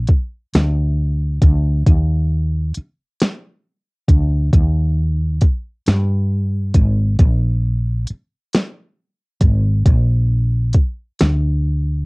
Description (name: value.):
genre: slow six-eight R&B.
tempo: 45 BPM (dotted quarters).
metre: 6/8.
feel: straight.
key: Eb major.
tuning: A4 = 440 Hz.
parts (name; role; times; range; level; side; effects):
woody fretless electric bass; bass; 0.0-12.1 s; Ab1 to G2; -16 LUFS; equal; none.
smooth R&B drum kit; drums; 0.1-11.4 s; hi-hat, kick drum, snare drum; -14 LUFS; equal; cassette tape.
room: little or no reverb.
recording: home recording on cassette.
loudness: -15 LUFS.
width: side -39 dB against mid.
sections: 0.0-12.1 A section.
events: none.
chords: none.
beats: 0.53 | 1.86 3.19 | 4.53 5.86 | 7.19 8.53 | 9.86 11.19.